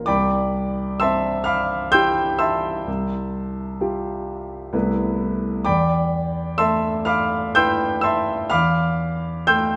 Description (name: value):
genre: classical, impressionist solo piano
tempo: 64 BPM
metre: 3/4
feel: rubato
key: unclear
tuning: A4 = 442 Hz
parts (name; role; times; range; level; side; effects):
- warm concert grand piano; solo; 0.0-9.8 s; C2 to G6; -21 LUFS; equal; none
room: wet scoring stage reverb, RT60 1.7 s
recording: none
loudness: -21 LUFS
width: mono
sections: 0.0-9.8 A section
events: none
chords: 0.1 Cadd9; 2.9 Fmaj9/C; 4.7 Amadd9/C; 5.7 E7sus4